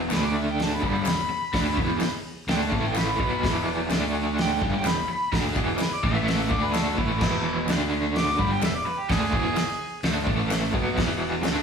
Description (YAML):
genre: garage rock duo or trio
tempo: 127 BPM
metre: 4/4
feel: straight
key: unclear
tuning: A4 = 440 Hz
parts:
  - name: raw garage guitar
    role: riff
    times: 0.0-11.6 s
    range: E2 to D4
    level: -25 LUFS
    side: right 1 dB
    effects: overdrive, tremolo
  - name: fuzz fingered electric bass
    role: bass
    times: 0.0-11.6 s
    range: E1 to D2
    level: -31 LUFS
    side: right 1 dB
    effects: overdrive
  - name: mellow harmonica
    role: melody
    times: 0.1-10.0 s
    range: E4 to D6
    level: -29 LUFS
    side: equal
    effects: overdrive
  - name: cloth-damped thuddy drum kit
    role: drums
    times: 0.1-11.6 s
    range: crash cymbal, hi-hat, kick drum, snare drum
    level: -28 LUFS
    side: equal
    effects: none
  - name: group handclap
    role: percussion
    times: 0.1-11.6 s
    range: none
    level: -38 LUFS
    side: left 4 dB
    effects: none
room: moderate large studio reverb, RT60 1.1 s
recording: band playing live in one room, studio reverb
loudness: -22 LUFS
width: side -6 dB against mid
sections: 0.0-11.6 A section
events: harmonica solo 0.0-11.6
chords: 0.1 D5; 0.8 E5; 2.7 A5; 3.2 E5; 3.9 D5; 4.6 E5; 6.0 A5; 6.5 D5; 7.0 E5; 7.7 D5; 8.4 E; 10.3 A5; 10.7 E5